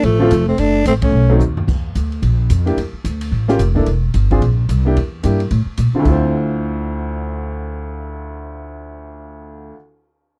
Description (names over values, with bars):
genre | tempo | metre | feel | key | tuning
jazz, small-group swing and bop | 220 BPM | 4/4 | swing 60% on 8ths | D minor | A4 = 440 Hz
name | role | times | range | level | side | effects
growling tenor saxophone | melody | 0.0-1.4 s | A3 to D4 | -19 LUFS | equal | none
breathy trombone | second line | 0.0-1.4 s | F3 to A3 | -22 LUFS | equal | none
upright bass | bass | 0.0-9.7 s | E1 to Bb2 | -19 LUFS | equal | none
open jazz drum kit | drums | 0.0-8.2 s | crash cymbal, cymbal swell, hi-hat, kick drum, ride cymbal, snare drum, toms | -27 LUFS | equal | none
clear upright piano | accompaniment | 0.2-9.8 s | D2 to C5 | -22 LUFS | equal | none
room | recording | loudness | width
little or no reverb | dry, close 1970s-style studio recording | -17 LUFS | mono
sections
0.0-1.7 A section; 1.7-6.1 B section; 6.1-8.2 C section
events
band accent 1.0; drum fill 1.4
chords
0.0 Dm7 (rootless); 0.6 F#m; 1.1 B7b9; 1.7 Dsus2; 2.2 Bb; 2.8 Dsus2; 3.3 A7b9b13; 3.9 E7alt; 4.4 Bbadd9; 5.0 Em7b5; 5.5 A5; 6.1 Dm9